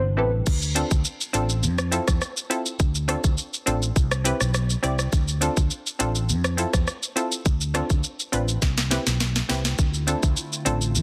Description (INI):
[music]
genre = dancehall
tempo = 103 BPM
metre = 4/4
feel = straight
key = D dorian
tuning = A4 = 440 Hz
[part]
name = hollow soft pad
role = sustained chords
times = 0.0-0.5, 9.8-11.0 s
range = C3 to A4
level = -38 LUFS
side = equal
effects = ensemble chorus, sidechain pumping
[part]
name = mellow fretless electric bass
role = bass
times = 0.0-11.0 s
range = G1 to F2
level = -27 LUFS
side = equal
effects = subtle chorus
[part]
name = hollow square pluck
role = accompaniment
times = 0.2-10.8 s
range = C4 to D5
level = -30 LUFS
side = equal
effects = chorus, sidechain pumping
[part]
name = island pop drum kit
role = drums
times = 0.5-11.0 s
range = crash cymbal, hi-hat, kick drum, rim click, shaker, snare drum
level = -26 LUFS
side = equal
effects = none
[sound]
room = light reverb, digital ambience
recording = dense, heavily limited modern master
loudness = -24 LUFS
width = mono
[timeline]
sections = 0.5-11.0 A section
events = drum fill 8.6-9.8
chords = 0.5 Dm7; 1.6 Fmaj7; 2.8 Dm7; 4.0 Cmaj7; 5.1 Dm7; 6.3 Fmaj7; 7.5 Dm7; 8.6 Cmaj7; 9.8 Dm7